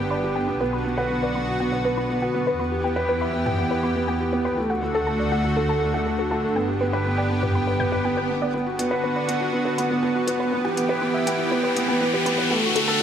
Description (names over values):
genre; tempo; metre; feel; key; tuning
piano and strings electronica; 121 BPM; 4/4; straight; B minor; A4 = 440 Hz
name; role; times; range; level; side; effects
lush unison pad; sustained chords; 0.0-13.0 s; D3 to G4; -26 LUFS; equal; chorus
felt-muted upright piano; riff; 0.0-13.0 s; A3 to E5; -24 LUFS; right 1 dB; tape echo
dark chamber double bass section; bass; 0.0-8.5 s; G1 to E2; -29 LUFS; equal; none
soft round pluck; arpeggios; 0.1-12.9 s; A4 to G6; -30 LUFS; left 1 dB; chorus, tape echo
deep house drum kit; drums; 3.5-3.6, 7.4-12.9 s; hi-hat, toms; -31 LUFS; equal; overdrive, high-pass filter on toms, high-pass filter on hats, high-pass filter on room
swell and riser; sound effects; 7.8-13.0 s; none; -28 LUFS; left 1 dB; none
room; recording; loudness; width
moderate echo chamber reverb, RT60 1.6 s; none; -21 LUFS; side -8 dB against mid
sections
0.0-8.5 A section; 8.5-13.0 B section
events
swell 7.8-8.5; build-up 8.5-13.0; riser 8.5-13.0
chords
0.0 G; 0.6 Bm; 2.6 Em; 4.6 D; 6.6 G; 8.5 Bm; 10.5 Em; 12.5 D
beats
0.11 | 0.61 1.10 1.60 2.10 | 2.59 3.09 3.58 4.08 | 4.58 5.07 5.57 6.06 | 6.56 7.05 7.55 8.05 | 8.54 9.04 9.53 10.03 | 10.53 11.02 11.52 12.01 | 12.51 13.01